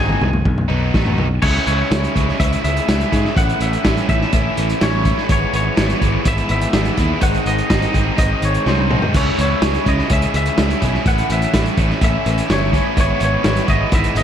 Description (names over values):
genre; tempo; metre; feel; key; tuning
indie rock; 125 BPM; 4/4; straight; C# minor; A4 = 441 Hz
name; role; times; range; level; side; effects
twangy electric guitar; melody; 0.0-14.2 s; B#4 to G#5; -22 LUFS; left 1 dB; tape echo
overdriven electric guitar; riff; 0.0-14.2 s; G#2 to E4; -21 LUFS; equal; none
modern bright picked electric bass; bass; 0.0-14.2 s; G1 to G#2; -20 LUFS; equal; none
vintage drum kit; drums; 0.1-14.2 s; crash cymbal, hi-hat, kick drum, snare drum, toms; -19 LUFS; equal; none
room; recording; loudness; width
moderate lush hall reverb, RT60 2.0 s, studio ambience; dreamy mix soaked in reverb; -14 LUFS; side -9 dB against mid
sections
0.0-1.4 A section; 1.4-14.2 B section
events
clean electric guitar solo 0.0-1.4; drum fill 8.7-9.1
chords
0.5 B; 1.4 C#m; 3.4 A; 5.3 E6/G#; 7.2 G#; 9.1 C#m; 11.1 A; 13.0 E6/G#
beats
0.46 0.94 | 1.43 1.91 2.40 2.88 | 3.36 3.85 4.33 4.81 | 5.30 5.78 6.26 6.74 | 7.22 7.70 8.18 8.66 | 9.14 9.62 10.10 10.58 | 11.06 11.54 12.01 12.49 | 12.97 13.45 13.92